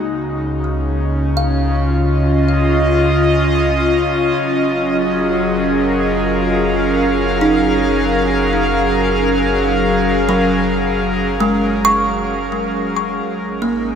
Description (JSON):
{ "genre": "ambient", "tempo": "54 BPM", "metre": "4/4", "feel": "straight", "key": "F# major", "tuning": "A4 = 441 Hz", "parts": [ { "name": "airy breathy pad", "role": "sustained chords", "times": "0.0-14.0 s", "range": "C#3 to E#5", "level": "-15 LUFS", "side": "equal", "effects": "chorus" }, { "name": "kalimba", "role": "arpeggios", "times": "0.0-14.0 s", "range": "F#3 to C#6", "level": "-20 LUFS", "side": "right 1 dB", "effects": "ping-pong delay" }, { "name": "warm sub bass", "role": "bass", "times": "0.0-14.0 s", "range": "F#1 to C#2", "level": "-23 LUFS", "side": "equal", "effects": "none" } ], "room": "wet huge ambient reverb, RT60 8.3 s", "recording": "none", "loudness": "-14 LUFS", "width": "side -7 dB against mid", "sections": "0.0-14.0 A section", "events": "fade-out 10.3-14.0", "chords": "0.0 C#add9; 4.4 F#maj7; 13.3 G#5" }